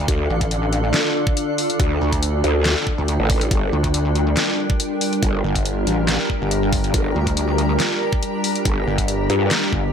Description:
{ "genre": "heavy wobble dubstep", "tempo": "140 BPM", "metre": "4/4", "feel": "swing 54% on 16ths, half-time", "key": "unclear", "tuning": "A4 = 441 Hz", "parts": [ { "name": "evolving wavetable pad", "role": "sustained chords", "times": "0.0-9.9 s", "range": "D3 to Bb4", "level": "-25 LUFS", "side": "equal", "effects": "ensemble chorus, built-in reverb, sidechain pumping" }, { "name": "pulsing pluck wobble bass", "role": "bass", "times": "0.0-9.9 s", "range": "G1 to D2", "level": "-21 LUFS", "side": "equal", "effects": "chorus, overdrive" }, { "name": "granular cloud pad", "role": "texture", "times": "0.0-9.9 s", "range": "D4 to Bb5", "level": "-25 LUFS", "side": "equal", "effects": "built-in reverb, sidechain pumping" }, { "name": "growl bass", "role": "bass", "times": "0.1-9.5 s", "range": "G1 to G2", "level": "-20 LUFS", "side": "equal", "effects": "chorus, overdrive" }, { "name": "dubstep drum kit", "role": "drums", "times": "0.1-9.6 s", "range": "handclaps, hi-hat, snare drum", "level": "-23 LUFS", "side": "left 1 dB", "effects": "none" }, { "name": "electronic kick drum", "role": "drums", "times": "0.1-9.8 s", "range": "none", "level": "-22 LUFS", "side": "equal", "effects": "none" } ], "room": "light reverb", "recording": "none", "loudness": "-17 LUFS", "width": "side -7 dB against mid", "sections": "0.0-9.9 A section", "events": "none", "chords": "0.0 Dm; 3.5 Gm7", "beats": "| 0.08 0.51 0.94 1.37 | 1.80 2.23 2.65 3.08 | 3.51 3.94 4.37 4.80 | 5.23 5.65 6.08 6.51 | 6.94 7.37 7.80 8.23 | 8.65 9.08 9.51" }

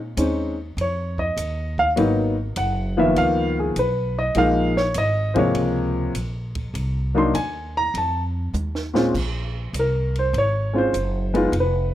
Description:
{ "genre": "jazz piano trio", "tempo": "100 BPM", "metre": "4/4", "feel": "swing 68% on 8ths", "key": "Bb minor", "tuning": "A4 = 440 Hz", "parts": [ { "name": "upright bass", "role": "bass", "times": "0.0-11.9 s", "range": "F1 to Bb2", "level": "-25 LUFS", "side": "equal", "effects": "none" }, { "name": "warm baby grand piano", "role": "melody", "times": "0.2-11.9 s", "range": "Bb2 to C6", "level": "-20 LUFS", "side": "left 1 dB", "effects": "plate reverb" }, { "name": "compact cocktail drum kit", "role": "drums", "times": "0.2-11.7 s", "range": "crash cymbal, hi-hat, kick drum, ride cymbal, snare drum, toms", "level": "-34 LUFS", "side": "right 2 dB", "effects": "none" } ], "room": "moderate studio reverb, RT60 0.5 s", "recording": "none", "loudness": "-20 LUFS", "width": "side -12 dB against mid", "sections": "0.0-9.1 A section; 9.1-11.9 B section", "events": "drum fill 8.5-9.1; grand piano solo 9.1-11.9", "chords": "0.0 Bbmadd11 (rootless); 2.0 Abm9; 3.2 Db13; 4.4 Bbm11/Ab; 6.7 Cm7; 7.9 F5; 9.1 Bbm9", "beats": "0.17 0.77 1.37 | 1.97 2.56 3.16 3.76 | 4.36 4.96 5.55 6.15 | 6.75 7.35 7.95 8.54 | 9.14 9.74 10.34 10.94 | 11.54" }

